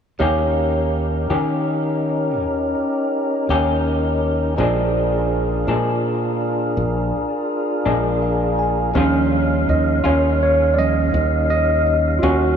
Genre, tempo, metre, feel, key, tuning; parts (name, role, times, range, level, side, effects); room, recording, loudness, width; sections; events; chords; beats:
slow blues; 55 BPM (dotted quarters); 12/8; straight; Eb mixolydian; A4 = 440 Hz
barky tine electric piano; accompaniment; 0.2-12.6 s; F3 to Ab5; -22 LUFS; right 2 dB
electric guitar through a small old amp; accompaniment; 0.2-12.5 s; Bb2 to G4; -26 LUFS; left 3 dB; tremolo
tonewheel organ; sustained chords; 0.2-12.6 s; G3 to F5; -21 LUFS; left 1 dB; slow rotary speaker
fingered electric bass; bass; 0.2-12.6 s; Bb1 to Eb3; -21 LUFS; equal
wet huge ambient reverb, RT60 4.2 s; dreamy mix soaked in reverb, small room ambience; -17 LUFS; side -7 dB against mid
0.2-9.0 A section; 9.0-12.6 B section
tine electric piano fill 7.9-9.0; tine electric piano solo 9.0-12.6
0.2 Eb7; 4.6 Bb7; 9.0 Eb9
| 0.21 1.30 2.40 3.50 | 4.59 5.69 6.78 7.87 | 8.96 10.05 11.14 12.23